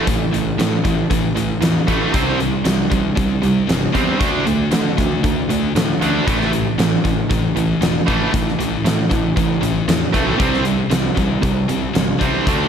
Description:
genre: hard rock.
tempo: 116 BPM.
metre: 4/4.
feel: straight.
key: A minor.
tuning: A4 = 440 Hz.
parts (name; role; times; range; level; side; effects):
crunchy overdriven guitar; riff; 0.0-12.7 s; A2 to D4; -20 LUFS; right 7 dB; none.
high-gain distorted guitar; riff; 0.0-12.7 s; A2 to D4; -22 LUFS; left 8 dB; distortion.
fuzz picked electric bass; bass; 0.1-12.6 s; E1 to D3; -23 LUFS; left 1 dB; overdrive.
huge arena drum kit; drums; 0.1-12.6 s; hi-hat, kick drum, snare drum; -20 LUFS; equal; none.
room: moderate lush hall reverb, RT60 2.6 s.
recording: big arena sound.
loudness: -15 LUFS.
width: side -8 dB against mid.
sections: 0.0-12.7 A section.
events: none.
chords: 0.0 A5; 2.1 C5; 4.2 D5; 6.3 A5; 10.4 C5.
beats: | 0.08 0.59 1.11 1.63 | 2.14 2.66 3.17 3.69 | 4.21 4.72 5.24 5.75 | 6.27 6.79 7.30 7.82 | 8.33 8.85 9.37 9.88 | 10.40 10.91 11.43 11.95 | 12.46.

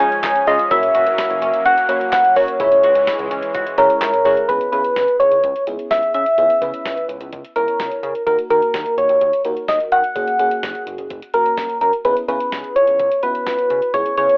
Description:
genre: synth-pop.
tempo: 127 BPM.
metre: 4/4.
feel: straight.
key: C# dorian.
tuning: A4 = 440 Hz.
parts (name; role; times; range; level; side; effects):
soft struck synth lead; melody; 0.0-14.4 s; A#4 to G#5; -15 LUFS; equal; chorus, phaser, cassette tape.
FM electric piano with soft pad layer; accompaniment; 0.0-14.4 s; G#3 to D#5; -22 LUFS; equal; chorus, cassette tape.
brassy analog pad; sustained chords; 0.0-4.5 s; E3 to C#4; -28 LUFS; equal; chorus, cassette tape.
koto; arpeggios; 0.0-6.4 s; C#4 to F#4; -27 LUFS; equal; cassette tape, analog delay.
chorused synth bass; bass; 0.0-14.3 s; F#1 to D#3; -29 LUFS; equal; none.
clean 12-bit digital drum machine; drums; 0.0-14.4 s; handclaps, hi-hat, kick drum, snare drum; -28 LUFS; equal; cassette tape.
room: wet booth ambience, RT60 0.2 s.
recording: home recording on cassette, telephone sound.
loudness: -14 LUFS.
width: side -30 dB against mid.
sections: 0.0-4.5 A section; 4.5-14.4 B section.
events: none.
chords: 0.0 C#; 0.7 F#; 2.6 C#m; 4.5 C#m7; 8.3 D#m; 10.2 F#add9; 12.0 C#m7.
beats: 0.24 | 0.71 1.18 1.66 2.13 | 2.60 3.07 3.54 4.02 | 4.49 4.96 5.43 5.91 | 6.38 6.85 7.32 7.80 | 8.27 8.74 9.21 9.69 | 10.16 10.63 11.10 11.58 | 12.05 12.52 12.99 13.47 | 13.94.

